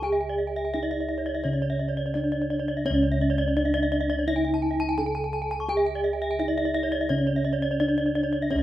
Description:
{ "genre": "Balinese gamelan", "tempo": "85 BPM", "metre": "4/4", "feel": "straight", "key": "C# pelog", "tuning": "A4 = 441 Hz", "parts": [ { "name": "gamelan-type bronze metallophone", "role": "melody", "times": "0.0-8.6 s", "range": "C#4 to A4-40c", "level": "-27 LUFS", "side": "equal", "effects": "none" }, { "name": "gamelan-type bronze metallophone", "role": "arpeggios", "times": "0.0-8.6 s", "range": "C#5 to C#6", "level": "-30 LUFS", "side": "left 2 dB", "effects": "slapback echo" }, { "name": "gamelan-type bossed gongs", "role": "bass", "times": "0.0-8.6 s", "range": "C#2 to G#4-45c", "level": "-29 LUFS", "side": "equal", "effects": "none" }, { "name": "gamelan-type bronze metallophone", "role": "arpeggios", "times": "0.1-8.6 s", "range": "C#5 to G#5-45c", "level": "-33 LUFS", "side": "right 7 dB", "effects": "slapback echo" }, { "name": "gamelan-type bronze metallophone", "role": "accompaniment", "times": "8.5-8.6 s", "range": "C#3", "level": "-38 LUFS", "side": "right 3 dB", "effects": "none" } ], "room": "little or no reverb", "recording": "recorded outdoors, with no room sound", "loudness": "-23 LUFS", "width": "side -13 dB against mid", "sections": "0.0-8.6 A section", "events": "none", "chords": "none", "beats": "| 0.03 0.73 1.44 2.15 | 2.85 3.56 4.26 4.97 | 5.67 6.38 7.09 7.79 | 8.50" }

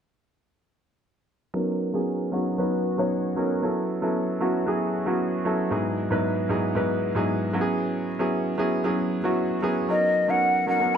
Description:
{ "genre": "amapiano", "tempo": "115 BPM", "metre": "4/4", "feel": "straight", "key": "B major", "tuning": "A4 = 436 Hz", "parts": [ { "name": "warm concert grand piano", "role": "accompaniment", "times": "1.5-11.0 s", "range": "G#2 to C#5", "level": "-23 LUFS", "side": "equal", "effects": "low-pass filter" }, { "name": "mellow hollow jazz flute", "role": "melody", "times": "9.9-11.0 s", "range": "D#5 to F#5", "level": "-20 LUFS", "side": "left 1 dB", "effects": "none" } ], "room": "moderate lush hall reverb, RT60 2.2 s", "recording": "none", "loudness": "-22 LUFS", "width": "side -8 dB against mid", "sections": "1.5-9.9 A section; 9.9-11.0 B section", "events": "filter sweep on grand piano 1.5-9.9", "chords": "1.5 Bmaj9; 3.6 A69; 5.7 Emaj9/G#; 7.5 F#9sus4; 9.9 Bmaj9", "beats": "| 1.54 2.06 2.59 3.11 | 3.63 4.15 4.67 5.20 | 5.72 6.24 6.76 7.28 | 7.80 8.33 8.85 9.37 | 9.89 10.41 10.94" }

